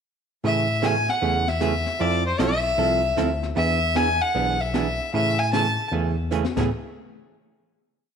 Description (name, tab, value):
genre	country, western swing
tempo	153 BPM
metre	4/4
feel	swing 65% on 8ths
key	A major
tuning	A4 = 438 Hz
part	archtop guitar, miked and amplified	accompaniment	0.4-6.7 s	A2 to A4	-26 LUFS	right 9 dB	none
part	bell-like tine electric piano	bass	0.4-6.7 s	B1 to A2	-26 LUFS	left 1 dB	fast stereo tremolo
part	jazz brush drum kit	drums	0.4-6.6 s	brushed snare drum, crash cymbal, hi-hat, kick drum, snare drum	-30 LUFS	left 6 dB	none
part	clear fiddle	melody	0.5-5.9 s	C5 to A5	-23 LUFS	left 2 dB	none
room	moderate echo chamber reverb, RT60 1.6 s, small room ambience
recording	1960s-style stereo with parts hard left and right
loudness	-20 LUFS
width	side -7 dB against mid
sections	0.4-6.7 A section; 6.7-8.2 final hit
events	drum fill 6.3-6.7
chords	0.4 Amaj7; 2.0 Fmaj7; 3.6 E7; 5.1 Amaj7; 6.7 N.C.